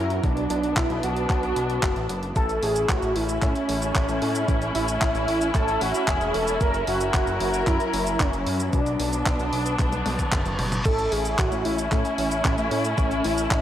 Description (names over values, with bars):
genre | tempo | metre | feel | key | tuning
italo disco | 113 BPM | 4/4 | straight | A major | A4 = 442 Hz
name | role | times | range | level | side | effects
wide unison lead | melody | 0.0-13.6 s | C#4 to A#4 | -26 LUFS | equal | analog chorus, tape echo, shimmer reverb
dark chamber string section | sustained chords | 0.0-13.6 s | F#3 to A#4 | -27 LUFS | left 1 dB | shimmer reverb
fat analog bass | bass | 0.0-13.6 s | E1 to A2 | -29 LUFS | equal | none
clean 12-bit digital drum machine | drums | 0.1-13.6 s | cabasa, crash cymbal, handclaps, hi-hat, toms | -30 LUFS | equal | none
electronic kick drum | drums | 0.2-13.6 s | none | -25 LUFS | equal | none
reverse cymbal | sound effects | 10.0-10.9 s | none | -34 LUFS | equal | none
room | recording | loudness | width
light reverb, digital ambience | dry, gritty hardware recording | -21 LUFS | side -11 dB against mid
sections
0.0-13.6 A section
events
drum fill 9.8-10.9; reverse cymbal 10.0-10.9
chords
0.2 Bm; 2.4 A; 6.6 F#7; 8.7 Bm; 10.9 A